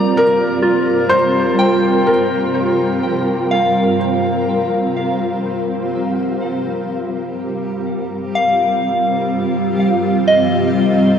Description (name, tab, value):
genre	ambient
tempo	62 BPM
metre	4/4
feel	straight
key	G minor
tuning	A4 = 441 Hz
part	felt-muted upright piano	melody	0.0-4.0 s	Bb4 to D5	-19 LUFS	equal	tape echo
part	granular cloud pad	sustained chords	0.0-11.2 s	G3 to Bb4	-17 LUFS	equal	built-in reverb
part	soft synth bell	arpeggios	0.0-11.2 s	F4 to Bb5	-19 LUFS	equal	chorus, phaser, tape echo
room	wet huge ambient reverb, RT60 7.5 s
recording	in a vast, echoing space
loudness	-14 LUFS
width	side -8 dB against mid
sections	0.0-11.2 A section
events	none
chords	0.0 Gm7; 5.9 F7sus4/G